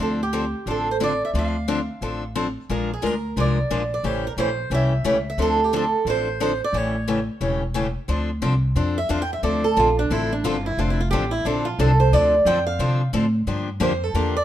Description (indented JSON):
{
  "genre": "acoustic string swing (jazz manouche)",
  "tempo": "178 BPM",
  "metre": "4/4",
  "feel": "swing 61% on 8ths",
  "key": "D minor",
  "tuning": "A4 = 441 Hz",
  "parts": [
    { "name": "picked swing-style acoustic guitar", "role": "melody", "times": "0.0-14.4 s", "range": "D4 to G5", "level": "-23 LUFS", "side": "right 3 dB", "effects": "none" },
    { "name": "picked steel-string acoustic guitar", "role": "accompaniment", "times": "0.0-14.4 s", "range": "C#3 to Bb4", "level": "-25 LUFS", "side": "left 4 dB", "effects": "none" },
    { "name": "upright bass", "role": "bass", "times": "0.0-14.4 s", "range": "E1 to C3", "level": "-24 LUFS", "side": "equal", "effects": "none" }
  ],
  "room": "light reverb",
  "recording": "minimal, uncompressed stereo recording",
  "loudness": "-19 LUFS",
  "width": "side -12 dB against mid",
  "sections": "0.0-8.1 A section; 8.1-14.4 B section",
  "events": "steel-string acoustic guitar solo 8.1-14.4",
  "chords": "0.0 Dm7; 2.7 Bb7; 4.0 A7#9; 5.4 Dm7; 6.7 A7; 8.1 Dm7; 13.5 Gm7"
}